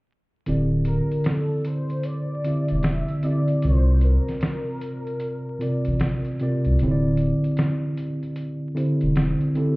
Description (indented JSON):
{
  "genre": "lo-fi hip hop",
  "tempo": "76 BPM",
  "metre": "4/4",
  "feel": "swing 65% on 16ths",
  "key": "D minor",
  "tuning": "A4 = 440 Hz",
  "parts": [
    { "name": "mellow tine electric piano", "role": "accompaniment", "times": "0.5-9.8 s", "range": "C3 to E5", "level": "-23 LUFS", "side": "equal", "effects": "medium stereo tremolo, cassette tape, low-pass filter" },
    { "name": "saturated sub bass", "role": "bass", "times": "0.5-9.4 s", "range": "D1 to C2", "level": "-21 LUFS", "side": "equal", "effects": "none" },
    { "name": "lo-fi sampler-style drum kit", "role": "drums", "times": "0.5-9.8 s", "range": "hi-hat, snare drum", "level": "-26 LUFS", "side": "equal", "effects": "none" },
    { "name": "warm velvety synth lead", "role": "melody", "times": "0.9-6.4 s", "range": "A4 to E5", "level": "-32 LUFS", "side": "left 1 dB", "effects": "chorus, low-pass filter, tape echo" }
  ],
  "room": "digital ambience",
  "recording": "heard muffled through a wall, club reverb, vinyl crackle, EQ, nothing above 7.9 kHz",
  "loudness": "-21 LUFS",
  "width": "side -23 dB against mid",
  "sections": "0.5-9.8 A section",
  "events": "kick muted 0.5-9.8",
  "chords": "0.5 D9sus4; 3.6 C9sus4; 6.8 D9sus4"
}